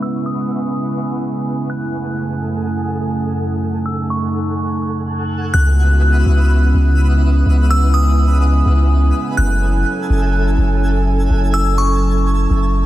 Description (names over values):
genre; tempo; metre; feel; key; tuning
hip hop; 125 BPM; 4/4; half-time; C# minor; A4 = 441 Hz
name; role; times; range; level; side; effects
glassy synth bell; melody; 0.0-12.7 s; C#6 to F#6; -24 LUFS; equal; chorus, tape echo
dark analog pad; sustained chords; 0.0-12.9 s; F#2 to G#5; -20 LUFS; right 2 dB; chorus
twinkling granular texture; texture; 0.0-12.9 s; A4 to F#6; -28 LUFS; equal; built-in reverb
long sustained 808-style bass; bass; 5.5-12.9 s; F#1 to C#2; -13 LUFS; equal; none
room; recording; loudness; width
digital ambience; dense, heavily limited modern master, low-pass filter; -14 LUFS; side -14 dB against mid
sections
0.0-5.5 A section; 5.5-12.9 B section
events
filter sweep 0.0-5.5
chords
0.0 C#m11; 1.7 F#m9; 5.5 C#m11; 9.4 F#m9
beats
0.26 0.74 1.22 | 1.70 2.18 2.66 3.14 | 3.62 4.10 4.58 5.06 | 5.54 6.02 6.50 6.98 | 7.46 7.94 8.42 8.90 | 9.38 9.86 10.34 10.82 | 11.30 11.78 12.26 12.74